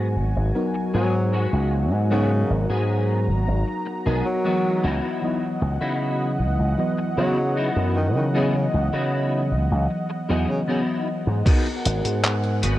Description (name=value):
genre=vaporwave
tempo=77 BPM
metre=4/4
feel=straight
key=G# minor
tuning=A4 = 441 Hz
part: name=mellow FM electric piano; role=accompaniment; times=0.0-12.8 s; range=E3 to D#5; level=-26 LUFS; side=left 1 dB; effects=wide subtle chorus, tape echo
part: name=lush unison pad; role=sustained chords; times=0.0-12.8 s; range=E3 to A#5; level=-31 LUFS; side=equal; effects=chorus
part: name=clean electric guitar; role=riff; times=0.0-12.8 s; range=G#3 to B4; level=-31 LUFS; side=left 1 dB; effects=ensemble chorus, low-pass filter, tape echo
part: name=slap bass with an envelope filter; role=bass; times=0.0-12.8 s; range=G#1 to C#3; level=-22 LUFS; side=equal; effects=tube saturation
part: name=breathy tenor saxophone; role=melody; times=0.9-10.8 s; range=C#3 to F#3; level=-30 LUFS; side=equal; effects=tape echo
part: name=detuned 8-bit digital drum machine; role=drums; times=11.5-12.8 s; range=crash cymbal, handclaps, hi-hat, tambourine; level=-27 LUFS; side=equal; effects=vintage 12-bit sampler grit
part: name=electronic kick drum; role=drums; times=11.5-11.6 s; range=none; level=-17 LUFS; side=equal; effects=vintage 12-bit sampler grit
room=light reverb, digital ambience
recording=cassette tape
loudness=-20 LUFS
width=side -14 dB against mid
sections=0.0-11.5 A section; 11.5-12.8 B section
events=none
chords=0.0 G#m7; 4.8 C#m11; 11.5 G#m7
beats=0.55 1.33 | 2.11 2.89 3.67 4.45 | 5.23 6.01 6.79 7.57 | 8.35 9.12 9.90 10.68 | 11.46 12.24